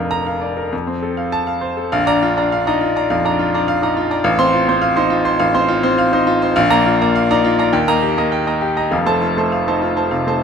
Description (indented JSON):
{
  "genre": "classical, virtuoso piano study",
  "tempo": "102 BPM",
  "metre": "4/4",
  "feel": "rubato",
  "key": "Bb major",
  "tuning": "A4 = 440 Hz",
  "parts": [
    { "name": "bright grand piano", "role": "solo", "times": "0.0-10.4 s", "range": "F1 to C6", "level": "-14 LUFS", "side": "equal", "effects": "none" }
  ],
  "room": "light reverb",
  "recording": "close, detailed microphones",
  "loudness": "-14 LUFS",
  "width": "side -6 dB against mid",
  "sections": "0.0-1.9 A section; 1.9-10.4 B section",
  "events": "none",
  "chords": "0.0 Bb/F; 0.7 F; 1.9 Bb; 4.2 F/A; 6.6 Bb; 7.7 Eb; 8.9 F"
}